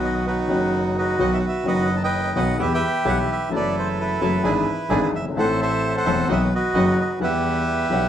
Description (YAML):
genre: tango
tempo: 129 BPM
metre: 4/4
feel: rubato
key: E minor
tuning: A4 = 440 Hz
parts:
  - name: bandoneon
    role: melody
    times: 0.0-8.1 s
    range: D#4 to A5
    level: -23 LUFS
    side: right 2 dB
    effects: none
  - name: warm upright piano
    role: accompaniment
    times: 0.0-8.1 s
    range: E1 to F#5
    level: -24 LUFS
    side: left 2 dB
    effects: none
  - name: bandoneon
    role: stabs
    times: 0.0-8.1 s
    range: F#3 to F#5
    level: -31 LUFS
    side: right 3 dB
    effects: none
  - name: clear double bass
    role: bass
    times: 0.0-8.1 s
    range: E1 to E2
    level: -26 LUFS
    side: equal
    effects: none
room: wet stone room reverb, RT60 1.0 s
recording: band playing live in one room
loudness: -19 LUFS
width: side -10 dB against mid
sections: 0.0-8.1 A section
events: none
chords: 0.0 B; 2.6 Em; 3.5 B7sus4/F#; 4.4 E7/G#; 5.4 Am; 6.3 B; 7.2 Emadd9